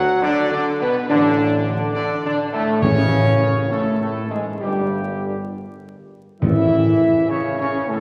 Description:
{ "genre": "classical", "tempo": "68 BPM", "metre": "4/4", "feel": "straight", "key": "A major", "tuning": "A4 = 440 Hz", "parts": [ { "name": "mellow trumpet section", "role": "melody", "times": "0.0-8.0 s", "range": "G4 to F#5", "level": "-29 LUFS", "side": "equal", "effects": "none" }, { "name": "mellow French horn section", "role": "sustained chords", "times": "0.0-8.0 s", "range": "G3 to F#4", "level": "-22 LUFS", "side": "equal", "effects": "none" }, { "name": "warm trombone section", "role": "sustained chords", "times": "0.0-8.0 s", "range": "G2 to F#3", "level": "-27 LUFS", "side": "equal", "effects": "none" }, { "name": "warm tuba", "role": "bass", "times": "0.0-7.2 s", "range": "G1 to A1", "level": "-30 LUFS", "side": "equal", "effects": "none" }, { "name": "timpani", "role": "percussion", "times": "2.8-7.7 s", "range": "A2", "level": "-24 LUFS", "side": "equal", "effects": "none" } ], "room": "wet concert hall reverb, RT60 2.1 s", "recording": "vinyl crackle", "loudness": "-19 LUFS", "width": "mono", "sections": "0.0-8.0 A section", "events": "none", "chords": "0.0 D; 2.8 A; 4.6 N.C.; 6.4 A", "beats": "0.23 1.10 1.96 | 2.83 3.71 4.62 5.52 | 6.42 7.31" }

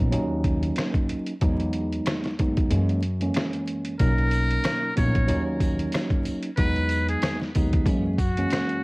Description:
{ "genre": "hip hop, boom-bap hip-hop", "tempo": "93 BPM", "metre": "4/4", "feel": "swing 56% on 16ths", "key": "unclear", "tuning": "A4 = 440 Hz", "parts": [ { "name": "mellow tine electric piano", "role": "accompaniment", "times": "0.0-8.8 s", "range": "E2 to D#4", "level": "-27 LUFS", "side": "right 1 dB", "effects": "medium stereo tremolo, cassette tape, high-pass filter, low-pass filter" }, { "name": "upright bass", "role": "bass", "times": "0.0-8.4 s", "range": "A#1 to F#2", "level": "-26 LUFS", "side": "equal", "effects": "none" }, { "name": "trip hop sampler-style drum kit", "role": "drums", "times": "0.1-8.8 s", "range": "hi-hat, kick drum, rim click, snare drum", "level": "-26 LUFS", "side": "equal", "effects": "cassette tape" }, { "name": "trumpet with metal mute", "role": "melody", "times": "4.0-8.8 s", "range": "F#4 to C#5", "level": "-29 LUFS", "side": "equal", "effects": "high-pass filter, low-pass filter, cassette tape, tape echo" }, { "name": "sleigh bells", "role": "percussion", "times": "4.0-8.7 s", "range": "none", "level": "-48 LUFS", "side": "left 2 dB", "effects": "none" } ], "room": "little or no reverb", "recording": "home recording on cassette, vinyl crackle", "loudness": "-22 LUFS", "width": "side -25 dB against mid", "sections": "0.0-8.8 A section", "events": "kick muted 2.7-4.0", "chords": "0.1 D#m7; 1.4 Emaj7; 2.7 F#7; 4.0 Bmaj7; 5.3 D#m7; 6.6 Emaj7; 7.9 F#7", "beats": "0.13 0.77 | 1.42 2.06 2.71 3.35 | 4.00 4.64 5.29 5.93 | 6.58 7.22 7.87 8.52" }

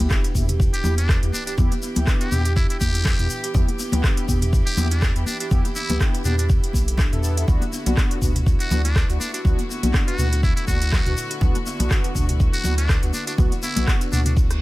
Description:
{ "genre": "afro house", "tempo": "122 BPM", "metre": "4/4", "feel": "swing 55% on 16ths", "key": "E minor", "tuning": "A4 = 441 Hz", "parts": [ { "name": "warm studio string section", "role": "sustained chords", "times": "0.0-14.6 s", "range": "D3 to G4", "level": "-36 LUFS", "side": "left 1 dB", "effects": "sidechain pumping" }, { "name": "mellow synth brass", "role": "stabs", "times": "0.0-14.2 s", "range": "B3 to A4", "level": "-31 LUFS", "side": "equal", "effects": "chorus, sidechain pumping, digital delay" }, { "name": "round analog bass", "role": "bass", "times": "0.0-14.6 s", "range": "B1 to E2", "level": "-22 LUFS", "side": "equal", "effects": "sidechain pumping" }, { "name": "afro-pop drum kit", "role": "drums", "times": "0.0-14.6 s", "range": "handclaps, hi-hat, rim click, toms", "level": "-28 LUFS", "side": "right 1 dB", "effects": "none" }, { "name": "tube shaker", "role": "percussion", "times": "0.0-14.6 s", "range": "none", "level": "-35 LUFS", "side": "left 3 dB", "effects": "none" }, { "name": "sub drop and reverse cymbal", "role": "sound effects", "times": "0.0-1.6, 14.5-14.6 s", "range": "none", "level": "-33 LUFS", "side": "equal", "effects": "none" }, { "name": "kalimba", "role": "arpeggios", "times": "0.1-14.5 s", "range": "B3 to E5", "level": "-32 LUFS", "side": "right 1 dB", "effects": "sidechain pumping, digital delay" }, { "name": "electronic kick drum", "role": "drums", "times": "0.1-14.5 s", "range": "none", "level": "-20 LUFS", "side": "equal", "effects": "none" }, { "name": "congas", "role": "percussion", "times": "0.3-14.2 s", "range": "none", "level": "-28 LUFS", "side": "left 1 dB", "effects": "none" }, { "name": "trumpet with metal mute", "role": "melody", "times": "0.7-14.3 s", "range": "D4 to G4", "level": "-29 LUFS", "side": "equal", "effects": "digital delay" } ], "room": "small room ambience", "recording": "none", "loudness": "-18 LUFS", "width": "side -18 dB against mid", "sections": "0.0-14.6 A section", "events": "impact 0.0-1.6; reverse cymbal 14.5", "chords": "0.0 Em; 7.5 D6", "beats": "0.10 0.60 1.09 | 1.58 2.07 2.56 3.06 | 3.55 4.04 4.53 5.02 | 5.51 6.01 6.50 6.99 | 7.48 7.97 8.46 8.96 | 9.45 9.94 10.43 10.92 | 11.41 11.91 12.40 12.89 | 13.38 13.87 14.37" }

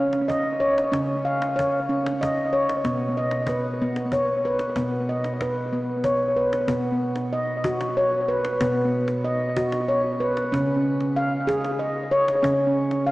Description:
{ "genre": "world meditative, meditative tuned percussion", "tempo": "63 BPM (dotted quarters)", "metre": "6/8", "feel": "straight", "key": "B lydian", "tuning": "A4 = 441 Hz", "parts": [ { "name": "handpan", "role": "arpeggios", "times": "0.0-13.1 s", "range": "B2 to E#5", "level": "-21 LUFS", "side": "equal", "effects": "analog delay, shimmer reverb" }, { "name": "cajon", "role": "percussion", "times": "0.1-13.1 s", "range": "none", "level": "-36 LUFS", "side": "equal", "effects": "none" } ], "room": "wet lush hall reverb, RT60 3.2 s", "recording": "dreamy mix soaked in reverb, small speaker sound", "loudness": "-21 LUFS", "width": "side -18 dB against mid", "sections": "0.0-6.7 A section; 6.7-13.1 B section", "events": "none", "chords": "0.0 C#; 2.9 B; 10.5 C#", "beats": "| 0.93 1.90 | 2.86 3.82 | 4.78 5.74 | 6.70 7.66 | 8.61 9.57 | 10.52 11.48 | 12.43" }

